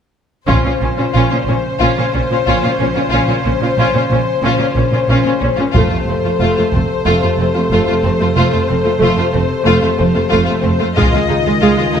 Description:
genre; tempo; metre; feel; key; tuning
cinematic, epic orchestral film score; 92 BPM; 4/4; straight; unclear; A4 = 440 Hz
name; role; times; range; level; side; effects
warm studio violin section; melody; 0.5-12.0 s; C5 to Eb5; -21 LUFS; left 6 dB; none
warm symphonic violin section; second line; 0.5-12.0 s; C4 to F4; -20 LUFS; left 2 dB; none
warm symphonic viola section; accompaniment; 0.5-12.0 s; Ab3 to Db4; -18 LUFS; equal; none
warm French horn section; sustained chords; 0.5-12.0 s; C3 to C5; -20 LUFS; left 2 dB; none
clear studio cello section; bass; 0.5-12.0 s; Db2 to Bb2; -19 LUFS; right 3 dB; none
warm chamber double bass section; bass; 0.5-12.0 s; F1 to Db2; -20 LUFS; right 3 dB; none
taiko ensemble; drums; 0.5-1.8, 5.7-7.0, 11.0-12.0 s; none; -18 LUFS; equal; none
room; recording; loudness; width
moderate scoring stage reverb, RT60 1.6 s; none; -12 LUFS; side -8 dB against mid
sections
0.5-12.0 A section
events
build-up 0.5-12.0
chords
0.5 Bbmadd9; 5.7 F; 11.0 Dbadd9

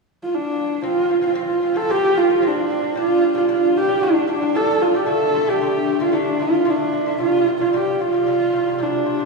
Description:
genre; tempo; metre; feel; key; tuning
mongolian traditional, Mongolian folk; 113 BPM; 4/4; straight; F gong mode; A4 = 440 Hz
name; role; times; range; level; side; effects
warm horsehead fiddle; melody; 0.2-9.3 s; D4 to A4; -17 LUFS; right 2 dB; none
lute; arpeggios; 0.8-9.3 s; C3 to D4; -24 LUFS; left 3 dB; none
room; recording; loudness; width
wet concert hall reverb, RT60 2.3 s; recorded in a church or concert hall, small room ambience; -16 LUFS; side -2 dB against mid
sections
0.8-9.3 A section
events
none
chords
0.0 N.C.; 0.8 F5; 3.0 G5; 5.1 D5; 7.2 C5

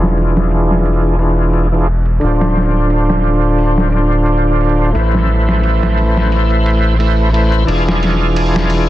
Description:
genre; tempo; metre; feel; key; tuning
trip hop; 88 BPM; 4/4; swing 54% on 16ths; A harmonic minor; A4 = 442 Hz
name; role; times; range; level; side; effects
bright tonewheel organ; accompaniment; 0.0-8.9 s; D3 to C5; -15 LUFS; equal; overdrive, chorus vibrato, slow rotary speaker, harmonic tremolo, tape echo
soft dub sub bass; bass; 0.0-8.9 s; D1 to A1; -14 LUFS; equal; none
trip hop sampler-style drum kit; drums; 0.0-8.9 s; hi-hat, ride cymbal, snare drum; -21 LUFS; equal; low-pass filter on cymbals, low-pass filter on snare, low-pass filter on hats
room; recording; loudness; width
digital ambience; dense, heavily limited modern master, low-pass filter; -11 LUFS; side -14 dB against mid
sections
0.0-8.9 A section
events
filter sweep 0.0-8.9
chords
0.0 E7b9; 2.2 Dm7; 5.0 Amadd9; 7.7 E7b9

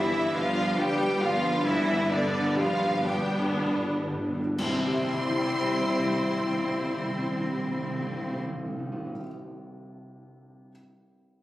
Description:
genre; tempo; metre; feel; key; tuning
cinematic, emotional film score for orchestra; 37-48 BPM (dotted quarters); 6/8; rubato; C major; A4 = 439 Hz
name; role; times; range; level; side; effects
warm studio violin section; melody; 0.0-8.4 s; D5 to C6; -35 LUFS; equal; none
mellow hollow silver concert flute; second line; 0.0-8.4 s; D5 to G5; -34 LUFS; equal; none
rich studio violin section; second line; 0.0-8.4 s; D4 to C5; -39 LUFS; left 1 dB; none
warm clarinet; second line; 0.0-8.4 s; D4 to C5; -35 LUFS; equal; none
warm cor anglais; second line; 0.0-8.4 s; C4 to G4; -37 LUFS; right 2 dB; none
felt-muted upright piano; accompaniment; 0.0-10.7 s; C2 to E5; -34 LUFS; left 1 dB; none
rich studio viola section; accompaniment; 0.0-8.4 s; G3 to E4; -35 LUFS; equal; none
dark French horn section; sustained chords; 0.0-8.4 s; B3 to E4; -34 LUFS; left 2 dB; none
concert harp; arpeggios; 0.0-9.2 s; G2 to G5; -41 LUFS; left 4 dB; none
rich studio cello section; bass; 0.0-8.4 s; D3 to C4; -33 LUFS; equal; none
rich studio double bass section; bass; 0.0-8.4 s; G1 to C2; -37 LUFS; right 1 dB; none
timpani; percussion; 0.0-9.1 s; G2 to C3; -35 LUFS; equal; none
clash cymbals and concert bass drum; percussion; 4.6-6.6 s; none; -37 LUFS; left 1 dB; none
room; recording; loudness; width
wet scoring stage reverb, RT60 1.6 s; recorded on a phone in the room, club reverb, compression; -25 LUFS; side -15 dB against mid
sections
0.0-4.6 A section; 4.6-7.6 B section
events
timpani fill 0.0-4.6; slowing down 0.0-4.6; band accent 4.6-5.6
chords
0.0 G; 4.6 C

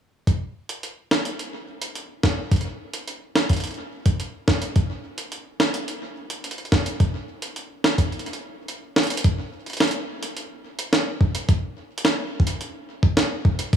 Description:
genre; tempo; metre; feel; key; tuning
IDM; 107 BPM; 4/4; straight; none; none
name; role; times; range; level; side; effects
electronic kick drum; drums; 0.3-13.8 s; none; -19 LUFS; equal; none
jungle sampler-style drum kit; drums; 0.3-13.8 s; hi-hat, snare drum; -24 LUFS; right 1 dB; none
room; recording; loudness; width
light reverb; studio ambience; -21 LUFS; side -9 dB against mid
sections
0.3-9.2 A section; 9.2-13.8 B section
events
break 8.1-9.2; drum fill 9.0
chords
none

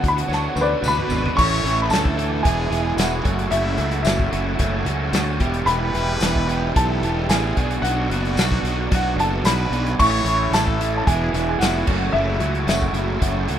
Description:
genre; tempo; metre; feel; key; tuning
indie rock; 111 BPM; 4/4; straight; A major; A4 = 440 Hz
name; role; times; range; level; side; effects
dark upright piano; melody; 0.0-13.6 s; B4 to C#6; -24 LUFS; left 1 dB; none
overdriven electric guitar; riff; 0.0-13.6 s; A2 to C#5; -25 LUFS; right 8 dB; ensemble chorus, digital delay
raw garage guitar; riff; 0.0-13.6 s; E2 to A4; -29 LUFS; left 10 dB; overdrive, phaser
fuzz fingered electric bass; bass; 0.0-13.6 s; E1 to D2; -24 LUFS; equal; overdrive
loose indie drum kit; drums; 0.0-13.6 s; crash cymbal, hi-hat, kick drum, snare drum, toms; -23 LUFS; left 1 dB; none
tambourine; percussion; 0.0-12.8 s; none; -34 LUFS; left 4 dB; none
brilliant trumpet; second line; 0.8-13.6 s; E4 to C#5; -31 LUFS; left 3 dB; digital delay
room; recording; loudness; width
studio reverb; rough home demo mix; -18 LUFS; side -10 dB against mid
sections
0.0-1.4 A section; 1.4-13.6 B section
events
upright piano solo 0.0-1.4; drum fill 0.3-1.4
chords
0.0 Bmadd9/D; 1.4 A; 2.4 E; 3.2 F#m7; 5.4 Em; 7.6 Bm; 10.0 A; 11.1 E; 11.9 F#m7

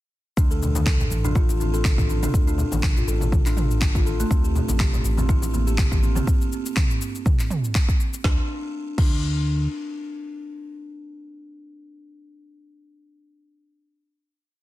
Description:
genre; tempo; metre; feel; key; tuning
afro house; 122 BPM; 4/4; swing 55% on 16ths; D minor; A4 = 441 Hz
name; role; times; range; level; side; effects
buzzing kalimba; arpeggios; 0.4-9.1 s; A3 to A4; -30 LUFS; equal; sidechain pumping, digital delay
smooth gliding synth bass; bass; 0.4-9.7 s; A1 to D2; -24 LUFS; equal; sidechain pumping
deep house drum kit; drums; 0.4-9.1 s; crash cymbal, finger snaps, handclaps, shaker, snare drum, toms; -29 LUFS; right 1 dB; soft clipping on snare
electronic kick drum; drums; 0.4-9.1 s; none; -21 LUFS; equal; none
congas; percussion; 0.6-6.3 s; none; -31 LUFS; left 3 dB; none
room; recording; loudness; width
digital ambience; dense, heavily limited modern master; -19 LUFS; side -16 dB against mid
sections
0.4-8.2 drop; 8.2-12.2 final note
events
drop 0.4-8.2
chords
0.4 D5; 4.3 N.C.

